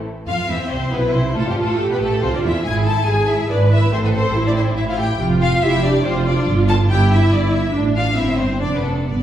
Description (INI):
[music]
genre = quick classical-period movement for string orchestra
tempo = 140 BPM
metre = 3/4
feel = rubato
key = A minor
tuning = A4 = 441 Hz
[part]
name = warm studio violin section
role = melody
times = 0.3-9.2 s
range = G3 to A4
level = -26 LUFS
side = left 3 dB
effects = none
[part]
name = rich studio violin section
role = second line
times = 0.3-9.2 s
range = G4 to A5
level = -23 LUFS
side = left 2 dB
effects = none
[part]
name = rich studio cello section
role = bass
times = 0.3-9.2 s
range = F2 to F3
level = -21 LUFS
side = right 1 dB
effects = none
[part]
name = rich studio double bass section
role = bass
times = 0.3-9.2 s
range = F1 to F2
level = -21 LUFS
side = right 2 dB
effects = none
[part]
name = rich studio viola section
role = accompaniment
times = 0.5-9.2 s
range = B3 to B4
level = -22 LUFS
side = right 1 dB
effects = none
[sound]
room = wet recital hall reverb, RT60 1.4 s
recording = heard from further back in the room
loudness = -15 LUFS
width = side -11 dB against mid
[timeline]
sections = 0.1-9.2 A section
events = none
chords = 0.1 Cmaj7; 1.4 B7(b5, no3)/A (rootless); 2.6 E/G#; 3.9 A5; 5.2 Dm11/F; 6.5 A7sus4/G (rootless); 7.7 Am; 8.6 Dm/F